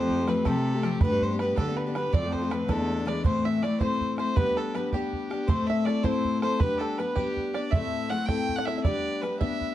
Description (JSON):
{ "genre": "celtic folk, Celtic jig", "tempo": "107 BPM (dotted quarters)", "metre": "6/8", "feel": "straight", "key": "A minor from 3.3 s", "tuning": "A4 = 439 Hz", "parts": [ { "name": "rich fiddle", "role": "melody", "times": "0.0-9.7 s", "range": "G4 to G5", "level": "-31 LUFS", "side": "equal", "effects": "none" }, { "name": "bluegrass banjo", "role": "second line", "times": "0.0-9.7 s", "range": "G4 to G5", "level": "-35 LUFS", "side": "right 4 dB", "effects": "none" }, { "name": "picked steel-string acoustic guitar", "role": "accompaniment", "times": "0.0-9.7 s", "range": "A2 to A4", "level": "-28 LUFS", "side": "left 4 dB", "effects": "none" }, { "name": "rich cello", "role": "bass", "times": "0.0-3.1 s", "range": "E2 to D3", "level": "-30 LUFS", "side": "equal", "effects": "none" }, { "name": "bodhran", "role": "percussion", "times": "0.1-9.7 s", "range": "none", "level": "-27 LUFS", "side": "right 2 dB", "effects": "none" } ], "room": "moderate studio reverb, RT60 0.5 s", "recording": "dark, warm production", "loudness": "-24 LUFS", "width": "side -12 dB against mid", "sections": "0.0-3.3 A section; 3.3-9.7 B section", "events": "none", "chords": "0.0 Fadd9; 1.0 G; 2.1 F; 2.7 E7; 3.3 Am; 4.4 G; 5.5 Am; 6.6 G; 7.7 Am; 8.8 G" }